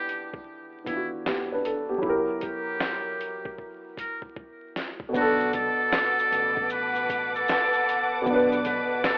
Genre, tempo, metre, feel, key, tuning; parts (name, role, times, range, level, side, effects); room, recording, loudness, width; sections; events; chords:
lo-fi hip hop; 77 BPM; 4/4; swing 63% on 16ths; A4 = 440 Hz
trumpet with metal mute; melody; 0.0-9.2 s; E4 to B4; -26 LUFS; equal
felt-muted upright piano; accompaniment; 0.0-9.2 s; B2 to B4; -27 LUFS; equal; cassette tape
lo-fi sampler-style drum kit; drums; 0.1-9.2 s; handclaps, hi-hat, kick drum, shaker, snare drum; -31 LUFS; equal; vintage 12-bit sampler grit
muted studio string section; sustained chords; 5.1-9.2 s; B4 to D6; -29 LUFS; equal
deep dub fingered electric bass; bass; 5.1-8.8 s; A1 to B1; -40 LUFS; equal
light reverb, small room reverb; rough home demo mix, vinyl crackle, telephone sound; -23 LUFS; side -30 dB against mid
0.0-5.1 A section; 5.1-9.2 B section
drum fill 3.6-5.1
0.0 Em7; 2.0 F#7b9; 5.1 Bm7